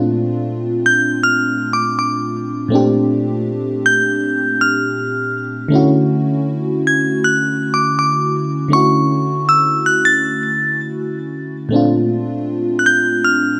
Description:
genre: R&B.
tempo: 80 BPM.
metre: 4/4.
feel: straight.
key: unclear.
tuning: A4 = 440 Hz.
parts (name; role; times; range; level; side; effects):
FM electric piano with soft pad layer; accompaniment; 0.0-13.6 s; A#2 to G4; -19 LUFS; equal; chorus.
glassy synth bell; melody; 0.9-13.6 s; C#6 to A6; -17 LUFS; equal; chorus, delay.
room: light reverb.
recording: none.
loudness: -16 LUFS.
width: mono.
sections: 0.0-13.6 A section.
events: none.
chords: 0.0 A#maj9; 5.7 Dmaj9; 11.7 A#maj9.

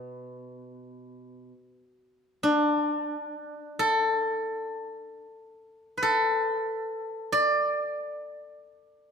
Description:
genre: chinese traditional, Chinese solo plucked strings.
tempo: 61-71 BPM.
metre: 4/4.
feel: rubato.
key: unclear.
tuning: A4 = 445 Hz.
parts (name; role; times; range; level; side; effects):
steel-string zither; solo; 0.0-9.1 s; B2 to D5; -26 LUFS; equal; none.
room: moderate recital hall reverb, RT60 1.8 s.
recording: minimal, uncompressed stereo recording.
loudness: -25 LUFS.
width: side -6 dB against mid.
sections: 0.0-9.1 A section.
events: none.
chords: none.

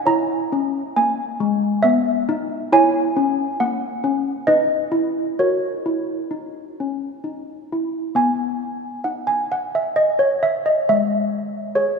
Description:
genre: classical, tune for handbells.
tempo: 67 BPM.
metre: 3/4.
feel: straight.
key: B major.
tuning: A4 = 439 Hz.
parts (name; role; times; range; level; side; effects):
malleted handbells; solo; 0.0-12.0 s; G#3 to A#5; -18 LUFS; equal; none.
room: wet church reverb, RT60 3.1 s.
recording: minimal, uncompressed stereo recording.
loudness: -18 LUFS.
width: side -5 dB against mid.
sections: 0.0-8.2 A section; 8.2-12.0 B section.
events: none.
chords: 0.1 C#m; 2.7 F#7; 4.5 B/D#; 5.4 F#; 8.2 B; 10.9 N.C..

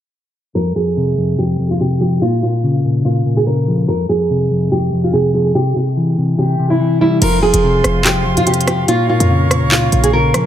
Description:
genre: hip hop, drill.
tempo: 144 BPM.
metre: 4/4.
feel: half-time.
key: F harmonic minor.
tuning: A4 = 440 Hz.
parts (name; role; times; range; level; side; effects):
nylon-string guitar; melody; 0.6-10.5 s; E4 to Bb4; -17 LUFS; right 1 dB; low-pass filter, digital delay.
mellow electric guitar; accompaniment; 0.6-10.5 s; F2 to G3; -15 LUFS; left 1 dB; spring reverb, low-pass filter.
breathy bright flute section; sustained chords; 7.2-10.5 s; F4 to Db6; -23 LUFS; right 2 dB; none.
short 808-style bass; bass; 7.2-10.3 s; F1 to C3; -18 LUFS; equal; none.
drill drum kit; drums; 7.2-10.4 s; crash cymbal, handclaps, hi-hat, rim click; -18 LUFS; equal; none.
room: digital ambience.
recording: low-pass filter.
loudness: -12 LUFS.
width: side -10 dB against mid.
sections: 0.6-7.2 A section; 7.2-10.5 B section.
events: filter sweep 0.6-7.2.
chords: 0.6 Fm; 2.2 Bbm; 3.9 Fm; 5.5 C; 7.2 Fm; 8.9 Bbm.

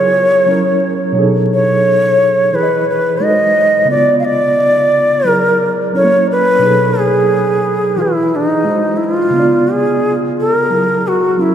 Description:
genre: R&B.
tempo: 88 BPM.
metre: 4/4.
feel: swing 53% on 16ths.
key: unclear.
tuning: A4 = 439 Hz.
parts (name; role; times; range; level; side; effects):
breathy bansuri; melody; 0.0-11.5 s; D#4 to E#5; -12 LUFS; equal; none.
mellow reed electric piano; accompaniment; 0.0-11.5 s; B2 to D#5; -16 LUFS; right 2 dB; fast tremolo.
room: wet cathedral reverb, RT60 5.0 s.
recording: recorded in a church or concert hall, vinyl crackle.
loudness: -10 LUFS.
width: side -9 dB against mid.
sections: 0.0-11.5 A section.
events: none.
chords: 0.5 F#7; 1.2 B13; 2.5 Emaj7; 3.2 G#7; 3.9 C#7b9; 5.3 F#9; 5.9 F#7; 6.6 B13; 8.0 Emaj7; 8.7 G#7; 9.3 C#7b9; 10.7 F#9.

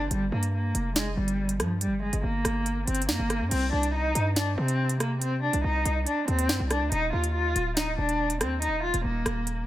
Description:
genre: hip hop, drill.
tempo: 141 BPM.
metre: 4/4.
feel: half-time.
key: C minor.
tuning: A4 = 440 Hz.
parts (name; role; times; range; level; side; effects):
dark cello; melody; 0.0-9.6 s; F3 to F4; -28 LUFS; equal; low-pass filter, digital delay.
hard-hitting 808-style bass; bass; 0.0-9.7 s; D1 to C3; -28 LUFS; equal; none.
drill drum kit; drums; 0.1-9.6 s; crash cymbal, hi-hat, rim click, snare drum; -30 LUFS; right 1 dB; none.
room: little or no reverb.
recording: none.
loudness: -24 LUFS.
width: side -14 dB against mid.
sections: 0.0-3.5 A section; 3.5-9.7 B section.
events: none.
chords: 0.1 Gm; 3.5 Cm; 6.9 Ebsus2.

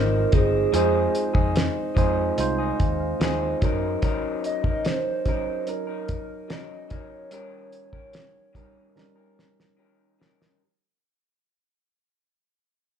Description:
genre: indie pop, bedroom pop.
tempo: 73 BPM.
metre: 4/4.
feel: straight.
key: unclear.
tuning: A4 = 440 Hz.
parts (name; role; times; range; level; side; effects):
warbly nostalgic lead; melody; 0.0-9.8 s; Ab4 to Eb5; -28 LUFS; right 5 dB; chorus.
electric guitar through a small old amp; accompaniment; 0.0-10.6 s; Ab2 to Bb4; -28 LUFS; left 2 dB; warbly pitch drift.
tine electric piano; accompaniment; 0.0-10.6 s; Gb3 to Ab5; -30 LUFS; right 4 dB; none.
vintage muted fingered electric bass; bass; 0.0-4.0 s; G1 to Gb2; -27 LUFS; left 1 dB; none.
cloth-damped thuddy drum kit; drums; 0.3-10.6 s; hi-hat, kick drum, snare drum; -24 LUFS; equal; none.
room: light reverb.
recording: band playing live in one room.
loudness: -21 LUFS.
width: side -8 dB against mid.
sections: 0.0-10.6 A section.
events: fade-out 0.0-10.6; drum fill 9.0-10.6.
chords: 0.0 Ab6; 0.7 Fm7; 3.6 Gb6; 7.3 Eb7.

